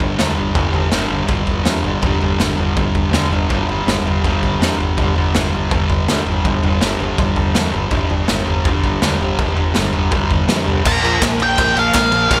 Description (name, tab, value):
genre	garage rock duo or trio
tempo	163 BPM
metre	4/4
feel	straight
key	G minor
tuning	A4 = 438 Hz
part	fuzz guitar	riff	0.0-12.4 s	G2 to Bb3	-21 LUFS	equal	distortion
part	growling fingered electric bass	bass	0.0-12.4 s	G1 to F2	-27 LUFS	equal	overdrive
part	raw garage drum kit	drums	0.0-12.4 s	crash cymbal, kick drum, ride cymbal, snare drum, toms	-20 LUFS	equal	none
part	octave-fuzz lead guitar	melody	10.9-12.4 s	F5 to Bb5	-18 LUFS	equal	distortion
part	group handclap	percussion	11.2-12.0 s	none	-25 LUFS	equal	none
room	little or no reverb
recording	none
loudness	-17 LUFS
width	mono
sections	0.0-10.9 A section; 10.9-12.4 B section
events	none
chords	0.0 G5; 10.9 Bb5